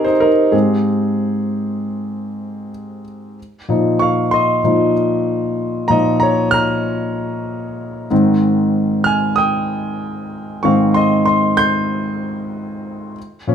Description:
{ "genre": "pop", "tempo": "95 BPM", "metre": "4/4", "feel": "straight", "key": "unclear", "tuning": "A4 = 441 Hz", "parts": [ { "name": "warm concert grand piano", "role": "solo", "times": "0.0-13.5 s", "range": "Ab2 to G6", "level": "-15 LUFS", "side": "equal", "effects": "none" } ], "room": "wet studio reverb, RT60 0.6 s", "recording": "band playing live in one room", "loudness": "-14 LUFS", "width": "side -8 dB against mid", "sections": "0.0-3.4 A section; 3.4-13.5 B section", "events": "grand piano solo 0.0-3.4, 3.4-13.5", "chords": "0.0 Cm; 0.5 Abmaj7; 3.4 Bbsus4; 8.1 Ab" }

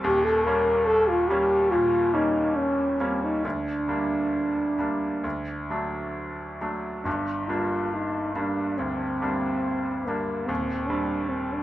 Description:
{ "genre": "classical, romantic duo for French horn and grand piano", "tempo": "65-72 BPM", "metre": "4/4", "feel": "rubato", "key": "G minor", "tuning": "A4 = 440 Hz", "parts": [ { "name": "mellow French horn", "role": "melody", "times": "0.0-11.6 s", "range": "Bb3 to Bb4", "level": "-25 LUFS", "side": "equal", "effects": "none" }, { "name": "bright grand piano", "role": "accompaniment", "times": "0.0-11.6 s", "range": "Eb1 to D4", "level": "-28 LUFS", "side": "equal", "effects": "none" } ], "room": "light reverb", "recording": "none", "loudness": "-23 LUFS", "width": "side -14 dB against mid", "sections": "0.0-11.6 A section", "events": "none", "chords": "0.0 Eb7; 3.4 Gm/D; 5.2 D; 7.1 Gm; 10.5 Cm/Eb" }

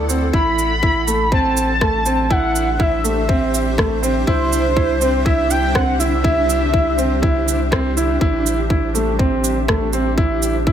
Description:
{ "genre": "piano and strings electronica", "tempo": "122 BPM", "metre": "4/4", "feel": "straight", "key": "A dorian", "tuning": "A4 = 441 Hz", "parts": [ { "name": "warm velvety synth lead", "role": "melody", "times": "0.0-7.7 s", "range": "C5 to B5", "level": "-20 LUFS", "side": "equal", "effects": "chorus, digital delay" }, { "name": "granular cloud pad", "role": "sustained chords", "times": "0.0-10.7 s", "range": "D4 to F#5", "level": "-25 LUFS", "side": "equal", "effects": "built-in reverb, sidechain pumping" }, { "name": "warm grand piano", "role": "riff", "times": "0.0-10.7 s", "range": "A3 to E4", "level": "-20 LUFS", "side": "right 2 dB", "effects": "digital delay" }, { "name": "warm sub bass", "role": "bass", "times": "0.0-10.7 s", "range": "A1 to D2", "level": "-22 LUFS", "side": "equal", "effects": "sidechain pumping" }, { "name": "electronic shaker and rim click", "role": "drums", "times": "0.1-10.5 s", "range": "none", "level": "-23 LUFS", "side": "right 2 dB", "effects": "none" }, { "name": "electronic kick drum", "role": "drums", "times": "0.3-10.7 s", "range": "none", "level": "-18 LUFS", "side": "left 1 dB", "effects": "none" } ], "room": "light reverb, digital ambience", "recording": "none", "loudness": "-15 LUFS", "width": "side -9 dB against mid", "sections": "0.0-8.2 A section; 8.2-10.7 A section", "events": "drop 0.0-8.2, 8.2-10.7", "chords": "0.3 Am; 4.3 C; 8.2 Am" }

